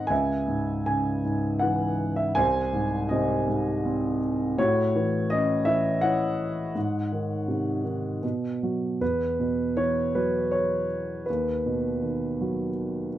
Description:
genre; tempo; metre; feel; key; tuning
classical, lyrical solo piano; 81 BPM; 3/4; rubato; C# harmonic minor; A4 = 440 Hz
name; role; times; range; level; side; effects
dark grand piano; solo; 0.0-13.2 s; B#1 to G#5; -24 LUFS; equal; none
room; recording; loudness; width
light reverb; dark, warm production; -24 LUFS; side -13 dB against mid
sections
0.0-9.0 A section; 9.0-13.2 B section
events
none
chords
0.1 C#m; 2.4 G#/B#; 4.6 A6; 6.8 G#; 8.2 B5; 9.0 Esus2; 11.3 B/D#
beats
| 0.10 0.87 1.62 | 2.36 3.10 3.84 | 4.58 5.31 6.03 | 6.75 7.47 8.23 | 9.01 9.78 10.54 | 11.28 12.02 12.75

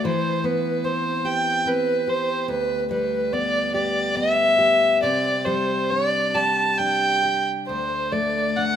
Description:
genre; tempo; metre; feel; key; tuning
celtic folk, Celtic slow air; 66-77 BPM; 3/4; rubato; unclear; A4 = 440 Hz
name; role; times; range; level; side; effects
dark fiddle; melody; 0.0-8.8 s; B4 to A5; -20 LUFS; equal; none
fingerpicked steel-string acoustic guitar; accompaniment; 0.0-8.8 s; D2 to G4; -26 LUFS; left 2 dB; none
room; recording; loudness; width
moderate recital hall reverb, RT60 1.7 s; minimal, uncompressed stereo recording; -19 LUFS; side -9 dB against mid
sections
0.0-8.8 A section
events
none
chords
0.0 Cmaj7/E; 2.5 G6/D; 5.0 Csus2; 7.7 D5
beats
| 0.05 0.84 1.66 | 2.49 3.32 4.16 | 5.02 5.89 6.79 | 7.68 8.56

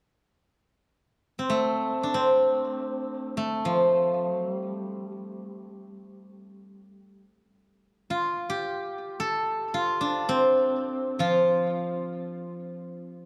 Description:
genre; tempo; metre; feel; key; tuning
chinese traditional, Chinese solo plucked strings; free time; none; none; C zhi mode; A4 = 440 Hz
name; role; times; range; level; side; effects
steel-string zither; solo; 1.4-13.3 s; F3 to A4; -27 LUFS; equal; tape echo
room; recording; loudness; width
moderate concert hall reverb, RT60 2.2 s; dark, warm production; -27 LUFS; mono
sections
0.6-13.3 A section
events
none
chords
none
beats
free time

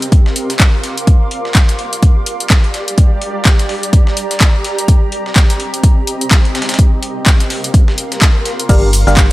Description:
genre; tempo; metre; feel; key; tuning
piano house; 126 BPM; 4/4; swing 59% on 16ths; G minor; A4 = 443 Hz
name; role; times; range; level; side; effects
house drum kit; drums; 0.0-9.3 s; crash cymbal, handclaps, hi-hat, shaker; -17 LUFS; left 1 dB; overdrive
granular cloud pad; texture; 0.0-9.3 s; C4 to D6; -21 LUFS; right 1 dB; built-in reverb, sidechain pumping
dusty soul sampler-style drum kit; drums; 0.1-9.3 s; hi-hat, snare drum; -24 LUFS; equal; sidechain pumping on hats, high-pass filter on hats, high-pass filter on snare
electronic kick drum; drums; 0.1-9.3 s; none; -9 LUFS; equal; overdrive
barking FM electric piano; riff; 8.7-9.3 s; G3 to F5; -15 LUFS; left 1 dB; phaser, sidechain pumping
organ-like FM bass; bass; 8.7-9.3 s; G1; -13 LUFS; equal; tube saturation, sidechain pumping
room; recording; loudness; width
digital ambience; dry, gritty hardware recording; -10 LUFS; side -18 dB against mid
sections
0.0-9.3 A section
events
none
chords
0.0 Bb; 1.1 Gm7; 4.6 Cm7; 6.5 Bb; 8.7 Gm7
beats
0.12 0.60 | 1.07 1.55 2.03 2.50 | 2.98 3.46 3.93 4.41 | 4.88 5.36 5.84 6.31 | 6.79 7.26 7.74 8.22 | 8.69 9.17

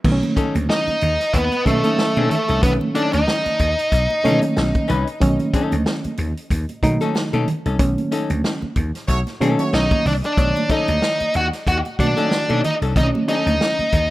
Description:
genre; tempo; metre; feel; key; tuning
funk; 93 BPM; 4/4; swing 56% on 16ths; B mixolydian; A4 = 440 Hz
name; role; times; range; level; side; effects
reed electric piano; stabs; 0.0-13.9 s; D3 to C#5; -23 LUFS; right 2 dB; none
vintage slap bass; bass; 0.0-14.1 s; B1 to B2; -21 LUFS; equal; none
vintage drum kit; drums; 0.0-14.1 s; crash cymbal, hi-hat, kick drum, snare drum; -23 LUFS; equal; none
congas; percussion; 0.0-14.1 s; none; -28 LUFS; right 3 dB; none
archtop guitar, miked and amplified; accompaniment; 0.4-13.5 s; C#4 to B4; -25 LUFS; left 5 dB; none
octave-fuzz lead guitar; melody; 0.7-4.4, 9.7-14.1 s; A3 to F#4; -20 LUFS; equal; distortion, tape echo
clear horn section; second line; 9.1-10.0 s; A3 to C#5; -27 LUFS; right 2 dB; none
room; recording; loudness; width
small room ambience; rough home demo mix; -17 LUFS; side -16 dB against mid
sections
0.0-14.1 A section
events
band accent 7.8-10.4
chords
0.0 B9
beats
| 0.05 0.69 1.34 1.98 | 2.63 3.28 3.92 4.57 | 5.21 5.86 6.50 7.15 | 7.79 8.44 9.09 9.73 | 10.38 11.02 11.67 12.31 | 12.96 13.61

